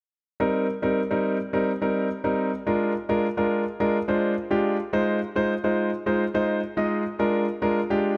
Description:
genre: pop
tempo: 106 BPM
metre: 4/4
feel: straight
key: C minor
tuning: A4 = 441 Hz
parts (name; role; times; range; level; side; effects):
- warm concert grand piano; accompaniment; 0.4-8.2 s; G3 to Eb5; -25 LUFS; equal; none
room: moderate lush hall reverb, RT60 2.4 s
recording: none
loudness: -25 LUFS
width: mono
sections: 0.4-8.2 A section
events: none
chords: 0.4 Cm7; 2.7 Bb7; 4.9 Fm7/Ab; 7.2 Bb7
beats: | 0.40 0.97 1.53 2.10 | 2.67 3.23 3.80 4.36 | 4.93 5.50 6.06 6.63 | 7.19 7.76

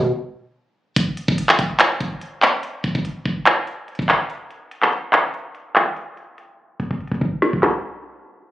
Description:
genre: hip hop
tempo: 144 BPM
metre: 4/4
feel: half-time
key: none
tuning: none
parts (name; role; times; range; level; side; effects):
- trap drum kit; drums; 1.0-7.7 s; handclaps, hi-hat, kick drum, snare drum, toms; -17 LUFS; equal; none
room: moderate lush hall reverb, RT60 2.2 s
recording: recorded on a phone in the room, studio reverb, compression, low-pass filter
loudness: -18 LUFS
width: side -14 dB against mid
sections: 0.0-7.6 A section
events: filter sweep 0.0-7.6; break 0.1-1.0; drum fill 6.8-7.6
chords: none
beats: 0.13 0.55 | 0.96 1.38 1.80 2.21 | 2.63 3.05 3.46 3.88 | 4.30 4.71 5.13 5.55 | 5.96 6.38 6.80 7.21 | 7.63

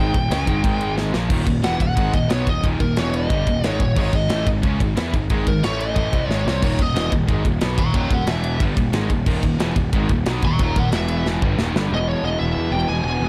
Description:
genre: heavy metal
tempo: 181 BPM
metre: 4/4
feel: straight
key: Eb phrygian dominant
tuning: A4 = 441 Hz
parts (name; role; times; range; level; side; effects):
- high-gain lead guitar; melody; 0.0-13.3 s; Bb4 to Db6; -28 LUFS; equal; distortion, digital delay
- heavy high-gain guitar; riff; 0.0-11.9 s; Eb2 to Fb4; -29 LUFS; equal; distortion
- high-gain distorted guitar; riff; 0.0-13.3 s; Eb2 to Fb4; -31 LUFS; equal; distortion
- overdriven electric guitar; riff; 0.0-13.3 s; Eb2 to Fb4; -30 LUFS; equal; none
- fuzz picked electric bass; bass; 0.0-13.3 s; Eb1 to Fb2; -26 LUFS; equal; overdrive
- tight metal drum kit; drums; 0.1-11.8 s; crash cymbal, kick drum, ride cymbal, snare drum; -24 LUFS; equal; none
room: small room ambience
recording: dark, warm production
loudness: -20 LUFS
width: mono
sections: 0.0-1.3 A section; 1.3-11.9 B section; 11.9-13.3 C section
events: drum fill 1.0-1.3, 6.3-6.6, 11.3-11.9; lead electric guitar solo 1.3-11.9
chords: 0.0 Eb; 0.6 Ab5; 1.1 Bb5; 1.3 Eb5; 3.0 E5; 3.3 Eb; 4.0 Ab5; 5.6 A5; 6.0 Ab5; 6.6 Eb5; 8.3 E5; 8.6 Eb; 10.9 E5; 11.3 Eb; 11.9 E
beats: 0.31 0.64 0.97 | 1.31 1.64 1.97 2.31 | 2.64 2.97 3.30 3.64 | 3.97 4.30 4.63 4.97 | 5.30 5.63 5.96 6.29 | 6.62 6.96 7.29 7.62 | 7.95 8.28 8.61 8.94 | 9.27 9.60 9.93 10.27 | 10.60 10.93 11.26 11.59 | 11.91 12.24 12.57 12.90 | 13.23

